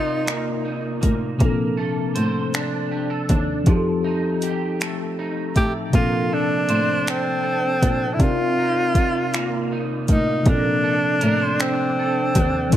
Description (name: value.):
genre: slow six-eight R&B.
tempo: 53 BPM (dotted quarters).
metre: 6/8.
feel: straight.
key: Bb major.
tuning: A4 = 440 Hz.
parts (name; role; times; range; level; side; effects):
breathy tenor saxophone; melody; 0.0-1.0, 5.6-12.8 s; C4 to G4; -22 LUFS; equal; none.
electric guitar at the edge of break-up; second line; 0.0-12.8 s; C3 to C5; -27 LUFS; right 4 dB; ensemble chorus.
mellow tine electric piano; accompaniment; 0.0-12.8 s; C3 to D5; -25 LUFS; left 2 dB; slow stereo tremolo.
muted cello; bass; 0.0-12.8 s; Eb2 to C3; -25 LUFS; equal; none.
smooth R&B drum kit; drums; 0.3-12.8 s; finger snaps, hi-hat, kick drum; -20 LUFS; equal; none.
room: light reverb, digital ambience.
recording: none.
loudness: -18 LUFS.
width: side -12 dB against mid.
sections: 0.0-12.8 A section.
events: none.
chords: 0.0 Cm11; 1.4 Bbmaj9; 3.7 F9; 5.9 Bbmaj9; 8.2 Cm11; 10.5 Bbmaj9.